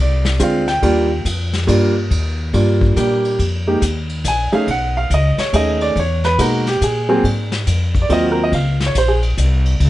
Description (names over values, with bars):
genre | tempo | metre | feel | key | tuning
jazz piano trio | 140 BPM | 3/4 | swing 65% on 8ths | Eb major | A4 = 440 Hz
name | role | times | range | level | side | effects
clear upright piano | melody | 0.0-9.2 s | F#3 to Ab5 | -16 LUFS | right 1 dB | none
upright bass | bass | 0.0-9.9 s | Bb1 to B2 | -17 LUFS | equal | none
vintage brush drum kit | drums | 0.2-9.9 s | hi-hat, kick drum, ride cymbal, snare drum | -24 LUFS | left 2 dB | none
room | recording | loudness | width
light reverb | nothing above 11.0 kHz | -14 LUFS | side -15 dB against mid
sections
0.0-3.4 A section; 3.4-9.9 A section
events
upright piano solo 0.0-9.9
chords
0.0 Bb9 (rootless); 0.8 Ebmaj9; 3.4 Fm11; 4.7 B13; 6.0 Eadd9(#11); 7.2 Ab13; 8.5 Bbmadd9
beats
0.40 | 0.83 1.26 1.69 | 2.11 2.54 2.97 | 3.40 3.82 4.25 | 4.68 5.11 5.53 | 5.96 6.39 6.82 | 7.24 7.67 8.10 | 8.53 8.95 9.38 | 9.81